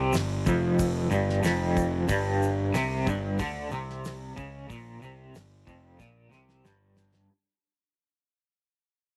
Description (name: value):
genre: psychedelic rock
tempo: 92 BPM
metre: 4/4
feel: straight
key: G minor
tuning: A4 = 440 Hz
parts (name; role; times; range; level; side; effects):
- twangy electric guitar; riff; 0.0-7.3 s; F2 to D3; -30 LUFS; equal; tremolo, double-tracked
- fuzz picked electric bass; bass; 0.0-7.3 s; F1 to D2; -34 LUFS; equal; overdrive
- damped 70s drum kit; drums; 0.1-7.3 s; hi-hat, kick drum, snare drum; -37 LUFS; equal; none
- egg shaker; percussion; 0.1-7.1 s; none; -47 LUFS; equal; none
room: studio reverb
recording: none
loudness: -27 LUFS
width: mono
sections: 0.0-7.3 A section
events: fade-out 0.0-7.3; drum fill 6.0-7.3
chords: 0.0 Gm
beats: 0.13 0.78 1.43 | 2.08 2.74 3.39 4.04 | 4.69 5.34 5.99 6.64